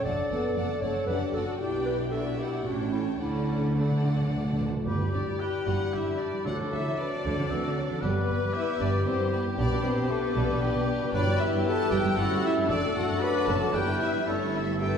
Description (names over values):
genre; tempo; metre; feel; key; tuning
quick classical-period movement for symphony orchestra; 115 BPM; 3/4; rubato; D major, G major from 4.9 s, D major from 11.1 s; A4 = 436 Hz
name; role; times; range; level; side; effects
rich chamber violin section; melody; 0.0-15.0 s; G4 to B5; -36 LUFS; left 4 dB; none
dark clarinet; second line; 0.0-15.0 s; B3 to D5; -35 LUFS; equal; none
rich chamber violin section; second line; 0.0-15.0 s; E4 to G5; -37 LUFS; left 4 dB; none
rich chamber viola section; accompaniment; 0.0-14.9 s; G3 to B4; -33 LUFS; equal; none
dark French horn section; sustained chords; 0.0-15.0 s; A3 to G4; -33 LUFS; left 4 dB; none
warm chamber cello section; bass; 0.0-15.0 s; F#2 to D3; -32 LUFS; right 2 dB; none
rich chamber double bass section; bass; 0.1-15.0 s; F#1 to D2; -33 LUFS; right 2 dB; none
timpani; percussion; 3.2-7.2 s; D3; -35 LUFS; right 1 dB; none
clear oboe; second line; 4.9-15.0 s; G4 to D5; -36 LUFS; right 1 dB; none
hollow concert flute; second line; 4.9-15.0 s; B5 to G6; -38 LUFS; left 1 dB; none
dark bassoon; accompaniment; 4.9-15.0 s; E3 to B3; -36 LUFS; equal; none
room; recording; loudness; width
wet scoring stage reverb, RT60 1.7 s; heard from further back in the room; -25 LUFS; side -7 dB against mid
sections
0.0-4.9 A section; 4.9-15.0 B section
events
timpani fill 3.2-4.9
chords
0.1 D/F#; 1.6 G/B; 2.1 Em7/B; 2.7 A7; 3.2 D; 4.9 G; 6.5 D9; 8.0 G; 9.6 G/B; 11.1 Em/G; 12.2 A7/G; 12.7 D/F#; 13.7 Em/G; 14.3 A5/G